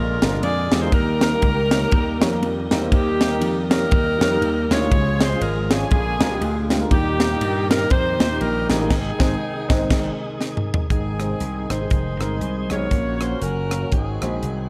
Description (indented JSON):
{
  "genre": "uptempo gospel",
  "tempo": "120 BPM",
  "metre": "4/4",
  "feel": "swing 59% on 8ths",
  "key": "Ab major",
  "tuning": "A4 = 440 Hz",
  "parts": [
    { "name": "edgy saxophone section", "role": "melody", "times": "0.0-14.7 s", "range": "Bb3 to D5", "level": "-27 LUFS", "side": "equal", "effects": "none" },
    { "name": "dark grand piano", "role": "accompaniment", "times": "0.0-14.7 s", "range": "Ab2 to Db5", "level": "-30 LUFS", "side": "equal", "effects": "none" },
    { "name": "tonewheel organ", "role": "sustained chords", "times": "0.0-14.7 s", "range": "Bb2 to Bb4", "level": "-32 LUFS", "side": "equal", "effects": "fast rotary speaker, chorus vibrato" },
    { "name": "slap bass", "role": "bass", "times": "0.0-14.7 s", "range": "F1 to G2", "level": "-26 LUFS", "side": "equal", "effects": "none" },
    { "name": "tight funk drum kit", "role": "drums", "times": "0.2-14.6 s", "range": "crash cymbal, hi-hat, kick drum, ride cymbal, rim click, snare drum, toms", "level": "-23 LUFS", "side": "equal", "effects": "none" }
  ],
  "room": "light reverb",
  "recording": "dark, warm production",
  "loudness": "-20 LUFS",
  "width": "mono",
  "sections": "0.0-10.9 A section; 10.9-14.7 B section",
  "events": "band accent 8.9-10.9; drum fill 10.4-10.9",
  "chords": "0.0 Bb7; 0.9 Eb; 4.9 Db; 5.9 Bb7; 6.9 Eb; 8.9 Ab; 12.9 Gb/Bb; 13.9 Ab7"
}